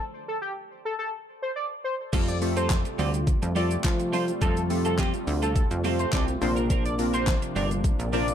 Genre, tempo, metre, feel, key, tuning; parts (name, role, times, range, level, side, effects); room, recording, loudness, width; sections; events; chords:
dance-pop; 105 BPM; 4/4; straight; F major; A4 = 440 Hz
octave-doubled lead; melody; 0.0-8.3 s; G4 to D5; -31 LUFS; left 1 dB; chorus, ping-pong delay
glassy digital keys; accompaniment; 2.1-8.3 s; A3 to C5; -32 LUFS; left 2 dB; chorus, sidechain pumping
warm analog pad; sustained chords; 2.1-8.3 s; C3 to F4; -34 LUFS; right 1 dB; chorus, sidechain pumping
twelve-string electric guitar; riff; 2.1-8.3 s; F3 to Bb4; -33 LUFS; right 6 dB; analog chorus
plucky analog bass; bass; 2.1-8.3 s; G1 to F3; -28 LUFS; equal; sidechain pumping
pop drum kit; drums; 2.1-8.3 s; crash cymbal, handclaps, hi-hat, kick drum, shaker, snare drum; -27 LUFS; equal; overdrive
light reverb; dark, warm production; -24 LUFS; side -9 dB against mid
0.0-2.1 A section; 2.1-8.3 A section
drop 0.0-2.1, 2.1-8.3; stop 0.0-2.1
0.0 N.C.; 2.1 Fadd9; 6.4 Bbadd9